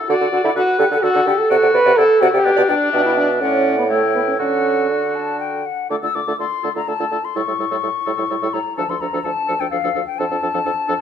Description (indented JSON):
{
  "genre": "quick classical-period movement for wind quintet",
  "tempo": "118-130 BPM",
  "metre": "3/4",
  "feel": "rubato",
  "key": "D major, D minor from 5.9 s",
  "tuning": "A4 = 439 Hz",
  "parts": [
    { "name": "warm oboe", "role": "second line", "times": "0.0-10.9 s", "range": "D4 to D5", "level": "-24 LUFS", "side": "left 4 dB", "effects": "none" },
    { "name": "concert flute", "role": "melody", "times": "0.1-11.0 s", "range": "F5 to E6", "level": "-23 LUFS", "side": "left 8 dB", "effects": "none" },
    { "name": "clear French horn", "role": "accompaniment", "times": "0.1-10.9 s", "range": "F3 to B4", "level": "-18 LUFS", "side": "right 1 dB", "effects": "none" },
    { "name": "warm clarinet", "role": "accompaniment", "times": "0.1-10.9 s", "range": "D4 to E5", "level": "-26 LUFS", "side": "right 9 dB", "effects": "none" },
    { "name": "mellow bassoon", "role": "bass", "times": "0.1-10.9 s", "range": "D2 to D3", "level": "-22 LUFS", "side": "right 3 dB", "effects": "none" }
  ],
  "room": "moderate recital hall reverb, RT60 1.5 s",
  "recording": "none",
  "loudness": "-15 LUFS",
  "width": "side -8 dB against mid",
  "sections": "0.0-5.9 A section; 5.9-11.0 A section",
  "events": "none",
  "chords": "0.1 D; 1.5 D7/C; 2.5 G/B; 2.9 Em7/B; 3.4 D/A; 3.9 A7; 4.4 D; 5.9 Dm; 7.4 A7; 8.8 Dm; 10.2 Dm/F",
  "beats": "| 0.09 0.55 1.03 | 1.50 1.98 2.46 | 2.93 3.41 3.90 | 4.40 4.91 5.41 | 5.91 6.40 6.88 | 7.36 7.83 8.30 | 8.78 9.25 9.72 | 10.19 10.66"
}